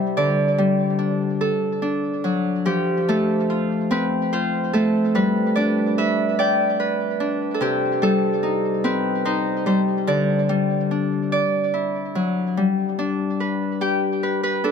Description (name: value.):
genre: children's music, lullaby.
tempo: 48 BPM (dotted quarters).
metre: 6/8.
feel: straight.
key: G major.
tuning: A4 = 435 Hz.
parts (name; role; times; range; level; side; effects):
Celtic harp; solo; 0.0-14.7 s; C3 to G5; -19 LUFS; left 1 dB; tape echo.
room: light reverb.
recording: close, detailed microphones.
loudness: -19 LUFS.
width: side -6 dB against mid.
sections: 0.0-12.6 A section; 12.6-14.7 B section.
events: none.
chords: 0.2 G5/D; 1.4 D; 2.7 F; 5.2 G; 7.6 Cm; 10.1 G5/D; 11.3 Dadd9; 12.6 G.